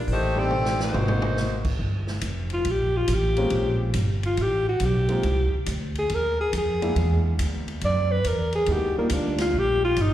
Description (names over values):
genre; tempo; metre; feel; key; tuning
jazz, big band swing; 139 BPM; 4/4; swing 66% on 8ths; unclear; A4 = 440 Hz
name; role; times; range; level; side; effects
bright saxophone section; melody; 0.0-1.6 s; A3 to D5; -27 LUFS; left 2 dB; slapback echo
upright bass; bass; 0.1-10.1 s; F1 to F#2; -25 LUFS; equal; none
swinging big-band drum kit; drums; 0.1-10.1 s; crash cymbal, hi-hat, kick drum, ride cymbal, snare drum, toms; -32 LUFS; equal; none
warm baby grand piano; accompaniment; 0.4-9.9 s; Gb3 to G4; -32 LUFS; equal; none
breathy alto saxophone; melody; 2.5-10.1 s; Bb3 to D5; -24 LUFS; equal; slapback echo
room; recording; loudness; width
light reverb; live gig heard through the venue's PA, recital hall reverb; -21 LUFS; side -12 dB against mid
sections
0.0-1.8 A section; 1.8-10.1 B section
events
drum fill 0.5-1.4; alto saxophone solo 1.8-10.1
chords
0.1 Am7b5; 0.9 Ab9; 1.8 Gm7; 3.5 Bbm9; 4.4 Asus2; 5.2 Ab6; 7.0 E7#11; 8.7 Ebmaj7